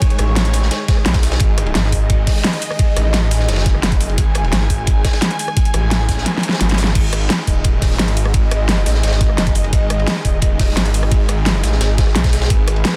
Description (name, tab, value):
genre	dark technical drum and bass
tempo	173 BPM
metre	4/4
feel	straight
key	unclear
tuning	A4 = 438 Hz
part	dark studio string section	sustained chords	0.0-13.0 s	D#3 to G#5	-27 LUFS	equal	sidechain pumping
part	crunchy breakbeat drum kit	drums	0.0-13.0 s	hi-hat, ride cymbal, snare drum	-29 LUFS	equal	high-pass filter on cymbals, high-pass filter on hats, high-pass filter on snare, high-pass filter on room
part	dubstep drum kit	drums	0.0-12.9 s	crash cymbal, hi-hat, rim click, snare drum	-22 LUFS	equal	none
part	electronic kick drum	drums	0.0-12.6 s	none	-18 LUFS	equal	overdrive
part	detuned saw bass	bass	0.2-12.8 s	D#1 to B1	-20 LUFS	equal	chorus, overdrive, sidechain pumping
room	studio reverb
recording	dense, heavily limited modern master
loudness	-16 LUFS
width	mono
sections	0.0-7.0 A section; 7.0-13.0 A section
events	drop 0.0-7.0, 7.0-13.0; kick drops out 6.3-7.0; drum fill 6.3-7.0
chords	0.0 G#5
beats	| 0.02 0.36 0.71 1.06 | 1.40 1.75 2.10 2.44 | 2.79 3.14 3.48 3.83 | 4.18 4.53 4.87 5.22 | 5.57 5.91 6.26 6.61 | 6.95 7.30 7.65 7.99 | 8.34 8.69 9.04 9.38 | 9.73 10.07 10.42 10.77 | 11.12 11.46 11.81 12.16 | 12.50 12.85